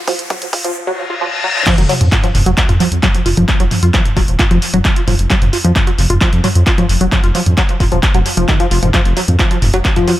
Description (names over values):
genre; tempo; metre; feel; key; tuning
driving peak-time techno; 132 BPM; 4/4; straight; unclear; A4 = 441 Hz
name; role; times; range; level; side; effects
riser, reverse cymbal and sub drop; sound effects; 0.0-3.5 s; none; -20 LUFS; left 2 dB; none
tight sequenced synth; riff; 0.1-10.2 s; Eb3 to F4; -17 LUFS; equal; chorus, phaser, sidechain pumping, tape echo
electronic kick drum; drums; 0.1-9.9 s; none; -14 LUFS; equal; overdrive, high-pass filter on kick
punchy analog drum machine; drums; 0.1-10.2 s; crash cymbal, handclaps, hi-hat, toms; -17 LUFS; equal; sidechain pumping on hats, sidechain pumping on toms, sidechain pumping on cymbals, tape echo
dark detuned saw bass; bass; 1.8-10.0 s; Eb1 to F2; -14 LUFS; equal; sidechain pumping
room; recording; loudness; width
light reverb; echo-heavy mix, high-pass filter; -11 LUFS; side -14 dB against mid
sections
0.0-1.7 A section; 1.7-10.2 B section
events
build-up 0.0-1.7; drum fill 0.0-0.8; riser 0.0-0.8; filter sweep on synth arpeggio sound 0.0-1.7; reverse cymbal 0.8-1.7; drop 1.7-10.2; impact 1.7-3.5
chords
none